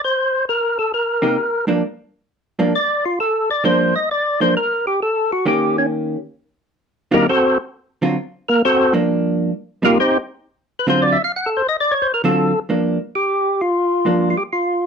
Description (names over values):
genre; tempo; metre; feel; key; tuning
jazz; 133 BPM; 4/4; swing 68% on 8ths; G minor; A4 = 441 Hz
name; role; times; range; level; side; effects
percussive tonewheel organ; melody; 0.0-14.9 s; Bb3 to F#5; -16 LUFS; equal; slow rotary speaker, overdrive
vintage hollow-body jazz guitar; accompaniment; 1.2-14.3 s; G2 to G4; -18 LUFS; right 2 dB; none
room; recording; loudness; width
light reverb; close, detailed microphones; -16 LUFS; side -6 dB against mid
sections
0.0-12.7 A section; 12.7-14.9 B section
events
tonewheel organ solo 0.0-12.7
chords
0.0 Cm7; 1.8 Gm7; 5.5 Eb7; 7.3 D7#9; 9.1 Gm7; 10.0 Cm; 10.9 D7#9; 12.7 Gm7